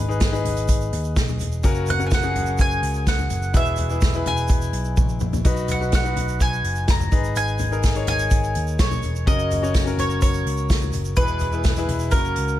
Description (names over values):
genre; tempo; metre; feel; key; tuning
piano-driven pop; 126 BPM; 4/4; straight; unclear; A4 = 440 Hz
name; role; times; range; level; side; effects
bowl-back mandolin; melody; 0.0-12.6 s; A#4 to A#5; -26 LUFS; right 1 dB; digital delay
clear concert grand piano; accompaniment; 0.0-12.6 s; B2 to C#5; -28 LUFS; left 4 dB; none
picked electric bass; bass; 0.0-12.6 s; E1 to D#2; -25 LUFS; equal; none
tube shaker; percussion; 0.1-12.6 s; none; -40 LUFS; right 9 dB; none
unplugged drum kit; drums; 0.2-12.5 s; hi-hat, kick drum, snare drum, toms; -21 LUFS; equal; none
room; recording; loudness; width
studio reverb; none; -19 LUFS; side -13 dB against mid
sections
0.0-12.6 A section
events
drum fill 5.0-5.5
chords
0.0 G#m; 1.6 F#; 3.5 E; 5.5 B; 7.1 G#m; 9.3 F#; 11.2 E